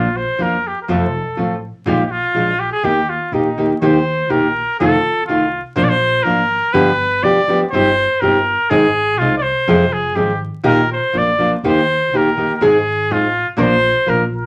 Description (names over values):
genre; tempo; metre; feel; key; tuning
mexican folk, mariachi; 123 BPM; 2/4; straight; Eb major; A4 = 443 Hz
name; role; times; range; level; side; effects
clear trumpet; melody; 0.0-14.5 s; Eb4 to D5; -19 LUFS; equal; none
nylon-string guitar; accompaniment; 0.0-14.2 s; F2 to Bb4; -18 LUFS; equal; none
upright bass; bass; 0.0-14.4 s; F1 to F2; -28 LUFS; equal; none
room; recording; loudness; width
wet studio ambience, RT60 0.5 s; vinyl crackle; -16 LUFS; mono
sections
0.0-3.8 A section; 3.8-14.5 B section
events
none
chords
0.0 Bb; 0.9 F; 1.9 Bb7sus4; 2.4 Bb7; 2.8 Eb; 4.8 F7; 5.8 Bb; 6.7 G7; 7.7 Cm/G; 8.7 Ab; 9.7 Fm; 10.7 Eb/Bb; 11.1 Bb; 11.6 Eb; 12.6 Ab; 13.6 Bb